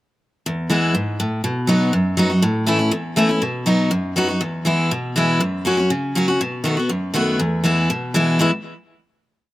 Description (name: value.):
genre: bluegrass.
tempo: 242 BPM.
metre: 4/4.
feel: straight.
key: E major.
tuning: A4 = 441 Hz.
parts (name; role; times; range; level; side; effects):
picked steel-string acoustic guitar; solo; 0.5-8.5 s; E2 to F#4; -17 LUFS; equal; none.
room: light reverb.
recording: recorded outdoors, with no room sound.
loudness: -17 LUFS.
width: side -16 dB against mid.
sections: 0.4-8.4 A section; 8.4-9.4 final chord.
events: none.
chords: 0.4 E; 1.4 B; 2.4 A; 3.4 B; 4.4 E; 5.4 F#; 6.4 B7; 7.4 E.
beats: | 0.45 0.69 0.94 1.19 | 1.44 1.69 1.93 2.18 | 2.43 2.68 2.92 3.17 | 3.42 3.67 3.92 4.17 | 4.41 4.66 4.91 5.16 | 5.41 5.66 5.91 6.16 | 6.40 6.65 6.90 7.15 | 7.40 7.65 7.89 8.14 | 8.39.